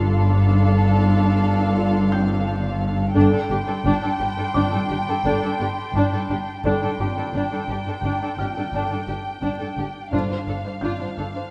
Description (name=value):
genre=cinematic, suspense film score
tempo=86 BPM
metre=5/4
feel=straight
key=unclear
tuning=A4 = 437 Hz
part: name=muted symphonic violin section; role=melody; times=0.0-11.5 s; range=F5 to G5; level=-31 LUFS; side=equal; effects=none
part: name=muted symphonic violin section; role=second line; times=0.0-11.4 s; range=D4 to C5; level=-32 LUFS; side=equal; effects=none
part: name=muted symphonic viola section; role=accompaniment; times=0.0-11.4 s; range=D4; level=-30 LUFS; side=equal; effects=none
part: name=muted symphonic cello section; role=bass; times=0.0-11.4 s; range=G2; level=-27 LUFS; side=equal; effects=none
part: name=muted symphonic double bass section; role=bass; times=0.0-11.2 s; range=G1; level=-27 LUFS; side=equal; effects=none
part: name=felt-muted upright piano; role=texture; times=0.0-11.5 s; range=D5 to G6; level=-37 LUFS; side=equal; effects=none
part: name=muted symphonic violin section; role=texture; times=0.0-9.7 s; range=A5 to C6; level=-40 LUFS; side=equal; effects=none
part: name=warm French horn section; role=sustained chords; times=1.8-10.4 s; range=D3 to C5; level=-31 LUFS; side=equal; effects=none
part: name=timpani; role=percussion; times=10.1-11.1 s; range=G2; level=-33 LUFS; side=equal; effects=none
room=moderate scoring stage reverb, RT60 1.8 s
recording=dark, warm production, vinyl crackle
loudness=-22 LUFS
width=mono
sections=0.0-11.5 A section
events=none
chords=0.0 Dm7/G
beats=0.36 1.06 1.76 2.45 | 3.15 3.85 4.55 5.25 5.94 | 6.64 7.34 8.04 8.73 9.43 | 10.13 10.83